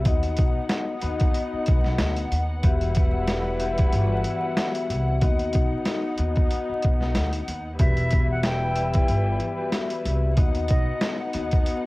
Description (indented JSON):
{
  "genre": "hip hop, boom-bap hip-hop",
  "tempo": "93 BPM",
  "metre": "4/4",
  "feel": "swing 57% on 16ths",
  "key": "E harmonic minor",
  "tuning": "A4 = 441 Hz",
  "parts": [
    { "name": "warm studio string section", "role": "sustained chords", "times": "0.0-11.9 s", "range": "E3 to F#5", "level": "-31 LUFS", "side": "equal", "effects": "high-pass filter, low-pass filter, cassette tape" },
    { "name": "upright bass", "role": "bass", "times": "0.0-11.6 s", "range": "E1 to D#2", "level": "-26 LUFS", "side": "equal", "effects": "transformer saturation" },
    { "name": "vibraphone with medium mallets", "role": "accompaniment", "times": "0.1-11.9 s", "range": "B3 to E5", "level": "-29 LUFS", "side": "left 4 dB", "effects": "high-pass filter, low-pass filter, cassette tape" },
    { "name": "boom bap sampler-style drum kit", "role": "drums", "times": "0.1-11.8 s", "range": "hi-hat, kick drum, snare drum", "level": "-23 LUFS", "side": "equal", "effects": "cassette tape" },
    { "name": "silver concert flute", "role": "melody", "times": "7.8-11.2 s", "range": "D#5 to G5", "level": "-29 LUFS", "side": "equal", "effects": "high-pass filter, low-pass filter, cassette tape" }
  ],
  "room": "small room ambience",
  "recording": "home recording on cassette, vinyl crackle",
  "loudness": "-21 LUFS",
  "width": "side -20 dB against mid",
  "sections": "0.0-11.9 A section",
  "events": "break 0.1-2.6",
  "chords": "0.1 B; 2.6 Emadd9; 5.2 B; 7.8 Emadd9; 10.4 B",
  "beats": "| 0.05 0.70 1.34 1.99 | 2.63 3.28 3.92 4.57 | 5.21 5.86 6.50 7.15 | 7.80 8.44 9.09 9.73 | 10.38 11.02 11.67"
}